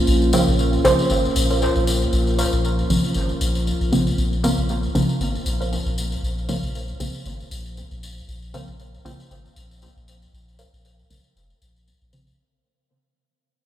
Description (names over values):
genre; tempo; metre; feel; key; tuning
dub techno; 117 BPM; 4/4; swing 56% on 16ths; Bb minor; A4 = 438 Hz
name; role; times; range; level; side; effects
dark analog pad; sustained chords; 0.0-12.4 s; Bb3 to Eb5; -25 LUFS; right 1 dB; chorus
pure sine sub bass; bass; 0.1-12.3 s; F1 to Bb1; -23 LUFS; equal; none
tambourine; percussion; 0.1-12.4 s; none; -30 LUFS; left 3 dB; none
wavetable chord stab; riff; 0.3-10.7 s; Bb4 to F5; -33 LUFS; right 2 dB; dub echo
filtered dub chord stab; stabs; 0.3-12.3 s; Db3 to C4; -23 LUFS; equal; chorus, phaser, dub echo
room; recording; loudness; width
moderate huge ambient reverb, RT60 9.0 s; played on a big sound system in a bare room, stone room reverb; -18 LUFS; side -12 dB against mid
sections
0.0-12.4 A section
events
fade-out 0.0-12.4; filter sweep on synth stab 0.0-12.4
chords
0.0 Bbmadd9